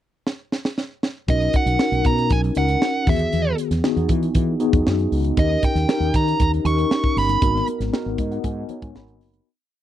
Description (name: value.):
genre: polished 1980s jazz-funk pop.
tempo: 117 BPM.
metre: 4/4.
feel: straight.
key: B major.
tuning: A4 = 440 Hz.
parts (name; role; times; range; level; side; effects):
tight funk drum kit; drums; 0.3-9.5 s; hi-hat, kick drum, snare drum; -22 LUFS; right 1 dB; none.
nasal lead guitar with a parked wah; melody; 1.3-7.6 s; D#5 to C#6; -23 LUFS; right 3 dB; overdrive, slapback echo.
mellow tine electric piano; accompaniment; 1.3-9.5 s; D#3 to B5; -23 LUFS; left 3 dB; medium stereo tremolo, lush chorus.
mellow fretless electric bass; bass; 1.3-9.4 s; F#1 to E3; -22 LUFS; equal; none.
congas; percussion; 5.4-9.5 s; none; -32 LUFS; right 15 dB; none.
room: light reverb.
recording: dry, close 1970s-style studio recording.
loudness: -18 LUFS.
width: side -12 dB against mid.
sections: 0.0-1.3 pickup bar; 1.3-9.5 verse.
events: drum fill 0.3-1.3; fade-out 7.4-9.5; tine electric piano fill 7.9-9.5.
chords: 0.0 N.C.; 1.3 Bmaj9; 3.1 Emaj9; 5.4 D#7; 7.4 G#m9.